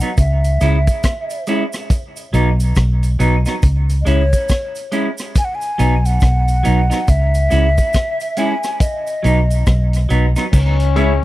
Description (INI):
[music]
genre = dub reggae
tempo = 70 BPM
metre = 4/4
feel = swing 62% on 16ths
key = C# minor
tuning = A4 = 438 Hz
[part]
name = mellow hollow concert flute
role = melody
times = 0.0-10.1 s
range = C#5 to G#5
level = -21 LUFS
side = equal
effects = dub echo
[part]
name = semi-hollow electric guitar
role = accompaniment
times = 0.0-11.1 s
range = F#3 to E4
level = -21 LUFS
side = right 2 dB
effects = dub echo
[part]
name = vintage drum kit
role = drums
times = 0.0-11.2 s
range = crash cymbal, hi-hat, kick drum, rim click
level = -17 LUFS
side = equal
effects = none
[part]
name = cabasa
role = percussion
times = 0.0-10.8 s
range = none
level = -36 LUFS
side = right 6 dB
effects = none
[part]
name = vintage muted fingered electric bass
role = bass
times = 0.2-11.2 s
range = B1 to C#2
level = -14 LUFS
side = equal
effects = none
[part]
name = growling trombone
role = second line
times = 10.5-11.2 s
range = C#4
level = -21 LUFS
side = left 12 dB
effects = dub echo
[part]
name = bright grand piano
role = stabs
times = 11.0-11.1 s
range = E4 to E5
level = -21 LUFS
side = left 3 dB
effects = none
[sound]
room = little or no reverb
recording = dry, close 1970s-style studio recording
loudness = -14 LUFS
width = side -16 dB against mid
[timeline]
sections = 0.0-10.5 A section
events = part muted 10.5-11.2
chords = 0.2 C#m; 1.9 B; 3.6 C#m; 5.4 B; 7.1 C#m; 8.8 B; 10.5 C#m